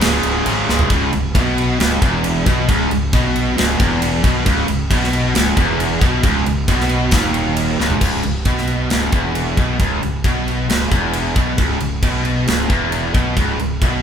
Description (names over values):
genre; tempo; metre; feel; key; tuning
hard rock; 135 BPM; 4/4; straight; C# minor; A4 = 440 Hz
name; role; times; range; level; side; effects
distorted electric guitar; riff; 0.0-14.0 s; C#2 to C#3; -22 LUFS; left 6 dB; overdrive
distorted electric guitar; riff; 0.0-8.0 s; C#2 to C#3; -24 LUFS; left 1 dB; overdrive
overdriven electric guitar; riff; 0.0-14.0 s; C#2 to C#3; -21 LUFS; right 5 dB; none
fuzz fingered electric bass; bass; 0.0-14.0 s; C#1 to B1; -22 LUFS; equal; overdrive
tight metal drum kit; drums; 0.0-13.9 s; crash cymbal, kick drum, snare drum, toms; -19 LUFS; equal; none
room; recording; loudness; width
moderate large studio reverb, RT60 1.2 s; band playing live in one room; -14 LUFS; side -8 dB against mid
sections
0.9-8.0 A section; 8.0-14.0 B section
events
drum fill 0.7, 7.8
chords
0.0 C#5; 0.9 C#m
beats
0.01 0.45 | 0.90 1.35 1.79 2.24 | 2.69 3.13 3.58 4.02 | 4.47 4.91 5.36 5.80 | 6.24 6.69 7.13 7.58 | 8.02 8.47 8.91 9.36 | 9.80 10.25 10.70 11.14 | 11.59 12.04 12.48 12.93 | 13.38 13.82